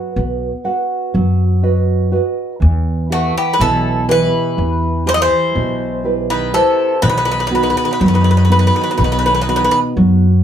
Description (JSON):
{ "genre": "greek folk, Greek bouzouki band", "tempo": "122 BPM (eighths)", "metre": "9/8", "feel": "straight", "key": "E harmonic minor", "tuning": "A4 = 439 Hz", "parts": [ { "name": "Greek bouzouki", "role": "melody", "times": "0.0-9.8 s", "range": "F#4 to E5", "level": "-16 LUFS", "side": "left 1 dB", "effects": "none" }, { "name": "Greek bouzouki", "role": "second line", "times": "0.0-9.8 s", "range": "C3 to B3", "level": "-22 LUFS", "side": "left 3 dB", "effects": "none" }, { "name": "nylon-string guitar", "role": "accompaniment", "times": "0.0-10.4 s", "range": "B2 to F#5", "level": "-18 LUFS", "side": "right 2 dB", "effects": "none" }, { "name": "upright bass", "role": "bass", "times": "0.2-10.4 s", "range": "B1 to F#2", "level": "-16 LUFS", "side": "equal", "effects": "none" } ], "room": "wet studio ambience, RT60 0.5 s", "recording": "band playing live in one room", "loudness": "-13 LUFS", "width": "side -9 dB against mid", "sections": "0.0-2.6 A section; 2.6-10.4 B section", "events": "none", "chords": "0.0 B; 2.6 Em; 7.0 B" }